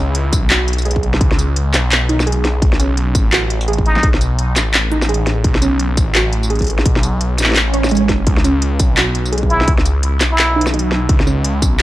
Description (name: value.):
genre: half-time drum and bass.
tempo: 170 BPM.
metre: 4/4.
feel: swing 60% on 16ths, half-time.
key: C# minor.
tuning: A4 = 439 Hz.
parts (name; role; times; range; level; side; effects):
warbly dusty pluck; arpeggios; 0.0-11.8 s; G#3 to C#5; -21 LUFS; right 3 dB; chorus, tape echo.
phased detuned saw bass; bass; 0.0-11.8 s; F#1 to C#2; -17 LUFS; equal; phaser.
industrial drum kit; drums; 0.1-11.8 s; handclaps, hi-hat, snare drum, tambourine; -17 LUFS; equal; small room ambience.
electronic kick drum; drums; 0.3-11.7 s; none; -16 LUFS; equal; distortion, small room ambience.
trumpet with plunger mute; melody; 3.9-4.1, 9.5-10.7 s; D#4 to E4; -22 LUFS; equal; vintage 12-bit sampler grit, tape echo.
swell; sound effects; 7.7-8.3 s; none; -23 LUFS; right 2 dB; none.
room: little or no reverb.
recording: dry, gritty hardware recording, cassette tape.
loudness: -12 LUFS.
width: side -16 dB against mid.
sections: 0.0-11.8 A section.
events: swell 7.7-8.3.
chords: 0.0 C#5; 2.6 B7(no3); 8.3 C#sus2.